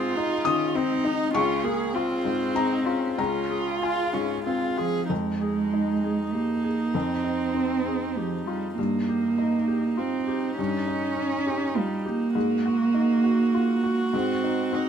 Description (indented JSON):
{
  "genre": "neoclassical piano and strings",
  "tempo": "92-103 BPM",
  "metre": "3/4",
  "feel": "rubato",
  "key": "F minor",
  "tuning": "A4 = 440 Hz",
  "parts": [
    { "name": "dark cello", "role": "second line", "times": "0.0-14.9 s", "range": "F3 to Ab4", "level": "-25 LUFS", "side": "right 4 dB", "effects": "none" },
    { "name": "felt-muted upright piano", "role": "accompaniment", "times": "0.0-14.9 s", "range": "Db2 to Eb6", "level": "-28 LUFS", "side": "left 6 dB", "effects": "none" },
    { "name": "rich viola", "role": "accompaniment", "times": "0.0-14.9 s", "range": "Bb3 to Ab4", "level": "-31 LUFS", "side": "right 2 dB", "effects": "none" }
  ],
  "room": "light reverb",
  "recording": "minimal, uncompressed stereo recording",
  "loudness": "-23 LUFS",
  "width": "side -8 dB against mid",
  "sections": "0.0-5.1 A section; 5.1-14.9 B section",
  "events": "none",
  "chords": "0.0 Ab; 1.3 Dbmaj7; 5.1 Fm7; 8.8 Eb7/G; 12.4 Ab7"
}